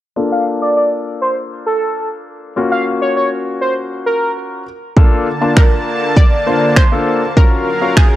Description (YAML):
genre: dance-pop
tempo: 100 BPM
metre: 4/4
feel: straight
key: Bb major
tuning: A4 = 440 Hz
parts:
  - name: warm concert grand piano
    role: accompaniment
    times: 0.2-8.2 s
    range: Bb3 to A5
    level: -18 LUFS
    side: left 3 dB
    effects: sidechain pumping, low-pass filter
  - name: octave-doubled lead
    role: melody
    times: 0.3-4.3 s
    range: A4 to F5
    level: -17 LUFS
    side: equal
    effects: chorus, low-pass filter, analog delay
  - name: supersaw pad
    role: sustained chords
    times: 5.0-8.2 s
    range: D3 to A5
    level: -20 LUFS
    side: right 1 dB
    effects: sidechain pumping
  - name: pop drum kit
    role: drums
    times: 5.0-8.1 s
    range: finger snaps, kick drum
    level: -9 LUFS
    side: equal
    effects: none
  - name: analog pluck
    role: melody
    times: 5.6-8.2 s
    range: Ab4 to D5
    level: -20 LUFS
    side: right 1 dB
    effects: chorus, analog delay
room: light reverb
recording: dry, gritty hardware recording, cassette tape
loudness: -12 LUFS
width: side -14 dB against mid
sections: 0.2-5.0 A section; 5.0-8.2 B section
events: filter sweep 0.2-5.0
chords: 0.2 Bbmaj7; 2.6 Gbmaj7; 4.7 N.C.; 5.0 Bbmaj7; 7.4 Gbmaj7